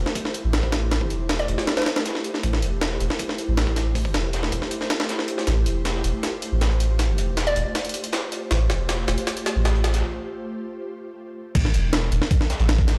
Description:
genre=drum and bass, jungle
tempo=158 BPM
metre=4/4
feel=straight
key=A minor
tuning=A4 = 440 Hz
part: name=ethereal airy pad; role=sustained chords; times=0.0-10.0 s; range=A3 to C5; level=-33 LUFS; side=equal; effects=ensemble chorus, built-in reverb
part: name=soft dub sub bass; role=bass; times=0.0-13.0 s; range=E1 to A1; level=-24 LUFS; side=equal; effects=none
part: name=breakbeat sampler-style drum kit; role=drums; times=0.1-13.0 s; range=crash cymbal, hi-hat, kick drum, snare drum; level=-27 LUFS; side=equal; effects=high-pass filter on hats, high-pass filter on kick, high-pass filter on snare, high-pass filter on cymbals
part: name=crunchy breakbeat drum kit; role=drums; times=0.2-13.0 s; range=hi-hat, snare drum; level=-37 LUFS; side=equal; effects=high-pass filter on hats, high-pass filter on snare, high-pass filter on room
part: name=hollow square pluck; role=melody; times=1.4-2.1, 7.5-7.8 s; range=C5 to D5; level=-30 LUFS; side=equal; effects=chorus, dub echo
room=light reverb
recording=played on a big sound system in a bare room, stone room reverb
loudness=-23 LUFS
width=mono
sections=0.0-11.6 A section; 11.6-13.0 B section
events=build-up 0.0-11.6; drum fill 5.5-10.0; break 10.0-11.6; drop 11.6-13.0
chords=0.0 Am7; 5.5 Fadd9; 11.6 A5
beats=0.16 0.54 | 0.92 1.30 1.68 2.06 | 2.44 2.82 3.19 3.58 | 3.96 4.33 4.71 5.09 | 5.47 5.85 6.23 6.61 | 6.99 7.37 7.75 8.13 | 8.51 8.89 9.27 9.65 | 10.03 10.41 10.79 11.17 | 11.55 11.93 12.31 12.69

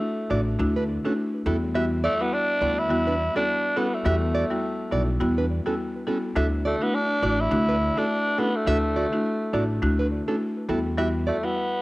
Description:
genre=afrobeats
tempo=104 BPM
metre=4/4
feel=swing 58% on 16ths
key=D major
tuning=A4 = 437 Hz
part: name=breathy tenor saxophone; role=melody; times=0.0-11.8 s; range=A3 to E4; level=-26 LUFS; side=equal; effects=cassette tape, analog delay
part: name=buzzing marimba with medium hard mallets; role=accompaniment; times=0.0-11.8 s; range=G3 to F#4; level=-27 LUFS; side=left 1 dB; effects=cassette tape
part: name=nylon-string guitar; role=riff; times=0.3-11.4 s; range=C#4 to E5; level=-30 LUFS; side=right 2 dB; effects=cassette tape, analog delay
part: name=upright bass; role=bass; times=0.3-11.3 s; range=A1 to E2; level=-27 LUFS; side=equal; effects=none
room=moderate spring reverb, RT60 2.0 s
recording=home recording on cassette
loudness=-22 LUFS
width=side -20 dB against mid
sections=0.0-11.8 A section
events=none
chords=0.0 Dadd9; 1.5 Emadd9; 6.4 Dadd9; 10.7 Emadd9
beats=0.01 0.59 1.17 | 1.75 2.32 2.90 3.48 | 4.05 4.63 5.21 5.79 | 6.36 6.94 7.51 8.09 | 8.67 9.25 9.82 10.40 | 10.98 11.55

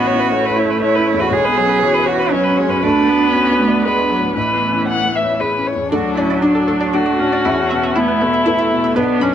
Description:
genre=neoclassical piano and strings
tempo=118 BPM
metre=3/4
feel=rubato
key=A major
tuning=A4 = 440 Hz
part: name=muted violin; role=melody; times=0.0-9.3 s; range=C#4 to F#5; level=-18 LUFS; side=left 2 dB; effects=none
part: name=muted cello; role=second line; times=0.0-9.3 s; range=A3 to G#4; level=-19 LUFS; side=right 4 dB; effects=none
part: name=felt-muted upright piano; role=accompaniment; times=0.0-9.3 s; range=A1 to E5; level=-21 LUFS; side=left 4 dB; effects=none
part: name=muted viola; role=accompaniment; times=0.0-9.3 s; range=E3 to C#4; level=-22 LUFS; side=right 3 dB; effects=none
part: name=muted chamber string section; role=sustained chords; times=0.0-9.3 s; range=B3 to C#5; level=-26 LUFS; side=left 1 dB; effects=none
part: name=string-like resonator pluck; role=arpeggios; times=5.9-9.3 s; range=D4 to B5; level=-23 LUFS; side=right 1 dB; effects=chorus, phaser, slapback echo
room=moderate studio ambience, RT60 0.5 s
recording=none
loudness=-13 LUFS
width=side -9 dB against mid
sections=0.0-5.9 A section; 5.9-9.3 B section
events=none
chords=0.0 Aadd9; 1.3 Bsus2; 2.8 D6; 4.4 Aadd9; 5.9 D; 7.5 Esus4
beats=0.32 0.81 | 1.31 1.82 2.32 | 2.83 3.33 3.84 | 4.36 4.88 5.40 | 5.92 6.43 6.94 | 7.46 7.97 8.47 | 8.97

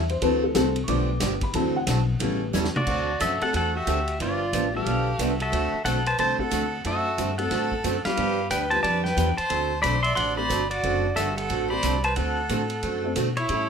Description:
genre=country, western swing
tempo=181 BPM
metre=4/4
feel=swing 63% on 8ths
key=D mixolydian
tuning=A4 = 437 Hz
part: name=dark upright piano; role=accompaniment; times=0.0-13.7 s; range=C#3 to D6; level=-28 LUFS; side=left 4 dB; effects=none
part: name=upright bass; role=bass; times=0.0-13.7 s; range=F#1 to B2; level=-28 LUFS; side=left 1 dB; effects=none
part: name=vintage drum kit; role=drums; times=0.1-13.6 s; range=crash cymbal, hi-hat, kick drum, ride cymbal, snare drum, toms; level=-34 LUFS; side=equal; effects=none
part: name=picked acoustic archtop guitar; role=accompaniment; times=0.2-13.7 s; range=D3 to A4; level=-29 LUFS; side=right 6 dB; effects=none
part: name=pedal steel guitar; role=melody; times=2.8-13.7 s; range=E4 to C6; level=-26 LUFS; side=left 1 dB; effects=plate reverb
part: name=clear fiddle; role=second line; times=2.8-13.7 s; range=E4 to D5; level=-32 LUFS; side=right 3 dB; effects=none
room=moderate studio ambience, RT60 0.5 s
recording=none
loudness=-22 LUFS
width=side -6 dB against mid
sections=0.0-2.9 A section; 2.9-13.7 B section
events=upright piano solo 0.0-2.9; drum fill 2.5-2.9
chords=0.2 D7; 0.9 G7; 1.5 D7; 2.2 A7; 2.9 D7; 4.2 G7; 5.5 D7; 8.2 G7; 9.5 D7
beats=| 0.22 0.55 0.88 1.21 | 1.54 1.88 2.21 2.54 | 2.87 3.20 3.53 3.86 | 4.20 4.53 4.86 5.19 | 5.52 5.85 6.19 6.52 | 6.85 7.18 7.51 7.85 | 8.18 8.51 8.84 9.17 | 9.51 9.84 10.17 10.50 | 10.84 11.17 11.50 11.83 | 12.16 12.50 12.83 13.16 | 13.50

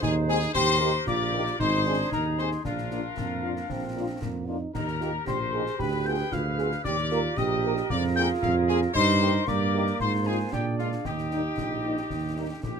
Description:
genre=military-style march for wind band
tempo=114 BPM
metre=2/4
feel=straight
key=Eb major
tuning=A4 = 440 Hz
part: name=bright trumpet section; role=melody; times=0.0-12.8 s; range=F4 to G5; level=-31 LUFS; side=left 4 dB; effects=none
part: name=clear euphonium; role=second line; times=0.0-12.8 s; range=Bb3 to Ab4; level=-31 LUFS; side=right 5 dB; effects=none
part: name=mellow piccolo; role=second line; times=0.0-12.8 s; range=F5 to G6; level=-32 LUFS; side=left 8 dB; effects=none
part: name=warm woodwind section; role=second line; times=0.0-12.8 s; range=D4 to Eb5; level=-36 LUFS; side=left 2 dB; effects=none
part: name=mellow tuba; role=bass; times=0.0-12.8 s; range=Ab1 to Bb2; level=-29 LUFS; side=right 3 dB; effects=none
part: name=concert snare drum, concert bass drum and clash cymbals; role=drums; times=0.0-12.8 s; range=none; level=-37 LUFS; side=left 3 dB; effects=none
part: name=mellow French horn section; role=accompaniment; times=0.3-12.5 s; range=G3 to Bb4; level=-31 LUFS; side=left 2 dB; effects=none
room=light reverb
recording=close, detailed microphones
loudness=-24 LUFS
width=side -6 dB against mid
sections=0.0-12.8 A section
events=none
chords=0.0 Ab/Eb; 0.5 Eb; 1.6 Ab; 2.6 Bb; 4.7 Eb; 5.8 Ddim7; 6.8 Eb; 7.9 Bb5/F; 9.0 Eb/G; 10.0 Fm/Ab; 10.5 Bb7; 11.1 Eb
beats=0.02 | 0.55 1.07 | 1.60 2.12 | 2.65 3.17 | 3.70 4.22 | 4.75 5.27 | 5.80 6.32 | 6.85 7.37 | 7.90 8.43 | 8.95 9.48 | 10.00 10.53 | 11.06 11.58 | 12.11 12.63

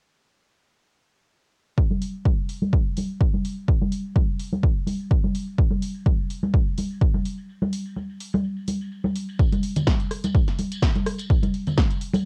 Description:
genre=house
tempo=126 BPM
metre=4/4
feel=swing 54% on 16ths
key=none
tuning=none
part: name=electronic kick drum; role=drums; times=1.8-11.9 s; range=none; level=-23 LUFS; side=equal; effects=none
part: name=tambourine and congas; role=percussion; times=1.8-12.2 s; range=none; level=-29 LUFS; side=equal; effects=sidechain pumping on perc, low-pass filter on perc
part: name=punchy analog drum machine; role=drums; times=2.0-12.2 s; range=hi-hat, rim click, snare drum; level=-35 LUFS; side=equal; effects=sidechain pumping on hats
room=little or no reverb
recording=home recording on cassette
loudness=-24 LUFS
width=mono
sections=1.8-9.4 A section; 9.4-12.3 B section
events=filter sweep on drum 1.8-9.4; break 7.5-9.4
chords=none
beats=| 1.78 2.25 2.73 3.21 | 3.68 4.16 4.63 5.11 | 5.59 6.06 6.54 7.01 | 7.49 7.97 8.44 8.92 | 9.40 9.87 10.35 10.82 | 11.30 11.78

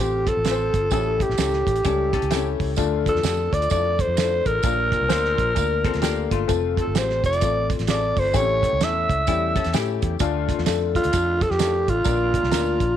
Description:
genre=uptempo 1960s-style soul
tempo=129 BPM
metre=4/4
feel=swing 62% on 8ths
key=unclear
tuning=A4 = 439 Hz
part: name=breathy alto saxophone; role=melody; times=0.0-13.0 s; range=F4 to E5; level=-22 LUFS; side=right 1 dB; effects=none
part: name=dark upright piano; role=accompaniment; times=0.0-12.9 s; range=A2 to C5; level=-26 LUFS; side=left 11 dB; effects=none
part: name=vintage muted fingered electric bass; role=bass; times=0.0-13.0 s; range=F1 to A2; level=-26 LUFS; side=equal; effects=none
part: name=cloth-damped thuddy drum kit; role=drums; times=0.3-12.9 s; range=hi-hat, kick drum, snare drum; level=-25 LUFS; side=right 4 dB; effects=none
part: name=tambourine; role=percussion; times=0.5-12.7 s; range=none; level=-37 LUFS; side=right 17 dB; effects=none
part: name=archtop guitar, miked and amplified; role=riff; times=1.9-2.8, 5.9-10.2 s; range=G3 to A4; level=-30 LUFS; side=left 12 dB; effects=none
room=light reverb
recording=1960s-style stereo with parts hard left and right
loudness=-19 LUFS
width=side -10 dB against mid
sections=0.0-13.0 A section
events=none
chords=0.0 F; 0.9 A7; 2.8 Dm; 4.6 Bb; 6.5 F; 8.3 A7; 10.2 Dm; 12.1 Bb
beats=0.45 | 0.91 1.38 1.84 2.31 | 2.77 3.24 3.70 4.17 | 4.63 5.10 5.56 6.03 | 6.49 6.96 7.42 7.88 | 8.35 8.81 9.28 9.74 | 10.21 10.67 11.13 11.60 | 12.06 12.53

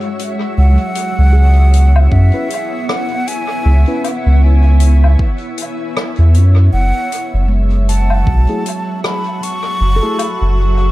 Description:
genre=ambient dub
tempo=78 BPM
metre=4/4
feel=swing 58% on 16ths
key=F# minor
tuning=A4 = 440 Hz
part: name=granular cloud pad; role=sustained chords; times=0.0-10.9 s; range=F#3 to E5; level=-23 LUFS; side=left 1 dB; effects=built-in reverb
part: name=handpan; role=arpeggios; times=0.0-10.9 s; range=F#3 to A4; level=-25 LUFS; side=right 2 dB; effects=tape echo
part: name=soft-mallet drum kit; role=drums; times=0.2-10.4 s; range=hi-hat, rim click, woodblock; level=-24 LUFS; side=left 2 dB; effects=dub echo
part: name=breathy mellow silver concert flute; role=melody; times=0.6-10.9 s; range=E5 to C#6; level=-22 LUFS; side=equal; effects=tape echo
part: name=warm sub bass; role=bass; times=0.6-10.9 s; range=F#1 to F#2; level=-9 LUFS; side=equal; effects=none
part: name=electronic kick drum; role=drums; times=2.1-8.4 s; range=none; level=-16 LUFS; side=equal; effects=none
part: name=mellow tine electric piano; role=stabs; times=2.3-10.3 s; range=A3 to B4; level=-25 LUFS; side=left 2 dB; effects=dub echo
room=small room ambience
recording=echo-heavy mix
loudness=-11 LUFS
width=side -17 dB against mid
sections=0.0-10.9 A section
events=none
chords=0.0 F#7sus2; 0.6 C#m7; 6.7 F#m9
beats=| 0.58 1.35 2.12 2.89 | 3.65 4.42 5.19 5.96 | 6.73 7.50 8.27 9.04 | 9.81 10.58

